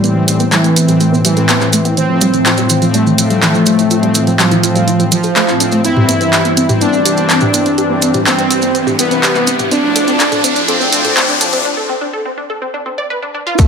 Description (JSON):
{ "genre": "melodic techno", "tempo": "124 BPM", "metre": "4/4", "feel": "straight", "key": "unclear", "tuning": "A4 = 438 Hz", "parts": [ { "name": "analog synth brass", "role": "melody", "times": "0.0-13.7 s", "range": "E3 to E4", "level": "-15 LUFS", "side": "right 1 dB", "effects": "chorus, sidechain pumping, tape echo" }, { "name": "wide unison pluck", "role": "arpeggios", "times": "0.0-13.7 s", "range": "E3 to D5", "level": "-18 LUFS", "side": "equal", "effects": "sidechain pumping, ping-pong delay" }, { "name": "brassy analog pad", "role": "stabs", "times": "0.0-13.7 s", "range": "G2 to D4", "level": "-16 LUFS", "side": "left 2 dB", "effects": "chorus, tremolo, sidechain pumping, ping-pong delay" }, { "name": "house drum kit", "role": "drums", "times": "0.0-13.7 s", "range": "handclaps, hi-hat, toms", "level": "-15 LUFS", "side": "equal", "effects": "overdrive" }, { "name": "maracas", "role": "percussion", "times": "0.0-13.7 s", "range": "none", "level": "-21 LUFS", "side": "right 5 dB", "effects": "none" }, { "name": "dark detuned saw bass", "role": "bass", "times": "0.2-11.6 s", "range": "D1 to A2", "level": "-30 LUFS", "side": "equal", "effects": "none" }, { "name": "riser and sub drop", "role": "sound effects", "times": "7.9-13.7 s", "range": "none", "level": "-20 LUFS", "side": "left 1 dB", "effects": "none" }, { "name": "electronic kick drum", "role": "drums", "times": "13.6-13.7 s", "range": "none", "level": "-7 LUFS", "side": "left 1 dB", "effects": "overdrive" } ], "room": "moderate lush hall reverb, RT60 1.7 s", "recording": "high-pass filter", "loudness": "-10 LUFS", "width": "side -6 dB against mid", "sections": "0.0-13.6 A section", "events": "build-up 0.0-13.6; filter sweep on synth pluck 0.0-13.6; filter sweep 0.0-13.6; riser 7.9-11.7; break 11.7-13.6", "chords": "0.0 Am; 2.0 F; 5.8 C; 9.7 Dm" }